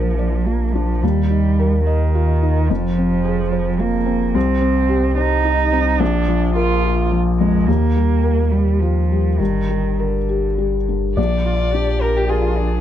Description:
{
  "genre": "neoclassical piano and strings",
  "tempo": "107 BPM",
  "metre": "3/4",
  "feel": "rubato",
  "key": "unclear",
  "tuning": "A4 = 441 Hz",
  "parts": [
    { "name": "muted cello", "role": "second line", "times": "0.0-12.8 s", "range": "D3 to G4", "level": "-21 LUFS", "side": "right 6 dB", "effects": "none" },
    { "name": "felt-muted upright piano", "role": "accompaniment", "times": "0.0-12.8 s", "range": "Bb1 to Eb5", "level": "-20 LUFS", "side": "left 4 dB", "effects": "none" },
    { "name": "punchy sub bass", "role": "bass", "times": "0.0-12.8 s", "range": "F1 to Eb2", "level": "-19 LUFS", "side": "equal", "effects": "none" },
    { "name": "muted violin", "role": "melody", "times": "11.2-12.8 s", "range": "G4 to D5", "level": "-24 LUFS", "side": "left 4 dB", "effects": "plate reverb" },
    { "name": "granular cloud pad", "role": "sustained chords", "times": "12.2-12.8 s", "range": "D4 to D5", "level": "-32 LUFS", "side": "right 2 dB", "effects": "built-in reverb" }
  ],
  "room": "little or no reverb",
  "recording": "dark, warm production",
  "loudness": "-15 LUFS",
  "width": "side -11 dB against mid",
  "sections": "0.0-11.2 A section; 11.2-12.8 B section",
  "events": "none",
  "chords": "0.0 Bb; 1.0 Ebadd9; 2.7 Fm; 4.3 Cm; 6.0 Bb; 7.7 Ebadd9; 9.4 Gm; 11.2 Bb"
}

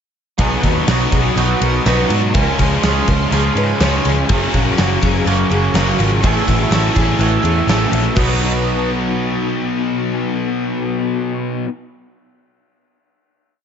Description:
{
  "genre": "rock, shoegaze and dream pop",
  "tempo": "124 BPM",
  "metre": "4/4",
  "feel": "straight",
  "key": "unclear",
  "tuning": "A4 = 439 Hz",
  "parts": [
    { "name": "picked twelve-string acoustic guitar", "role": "arpeggios", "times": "0.4-8.9 s", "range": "E#4 to C#5", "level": "-24 LUFS", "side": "left 2 dB", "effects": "ensemble chorus, slapback echo" },
    { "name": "distorted electric guitar", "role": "riff", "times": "0.4-11.7 s", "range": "F#2 to C#4", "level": "-22 LUFS", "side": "equal", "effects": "distortion" },
    { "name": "overdriven electric guitar", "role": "riff", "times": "0.4-11.7 s", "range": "F#2 to E4", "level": "-22 LUFS", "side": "left 10 dB", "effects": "ensemble chorus" },
    { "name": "twangy electric guitar", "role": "riff", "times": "0.4-11.7 s", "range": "F#2 to A4", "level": "-22 LUFS", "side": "right 10 dB", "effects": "reverse reverb" },
    { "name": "vintage muted picked electric bass", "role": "bass", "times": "0.4-11.4 s", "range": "F#1 to G#2", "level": "-19 LUFS", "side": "equal", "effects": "none" },
    { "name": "gated 80s drum kit", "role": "drums", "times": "0.4-8.3 s", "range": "crash cymbal, kick drum, ride cymbal, snare drum", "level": "-19 LUFS", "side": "equal", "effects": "none" }
  ],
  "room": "light reverb, small room ambience",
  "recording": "nothing above 7.8 kHz",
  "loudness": "-14 LUFS",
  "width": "side -8 dB against mid",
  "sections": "0.4-8.2 A section; 8.2-12.0 final chord",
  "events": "none",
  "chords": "0.4 B; 2.3 C#; 4.3 F#; 6.2 A; 8.2 B"
}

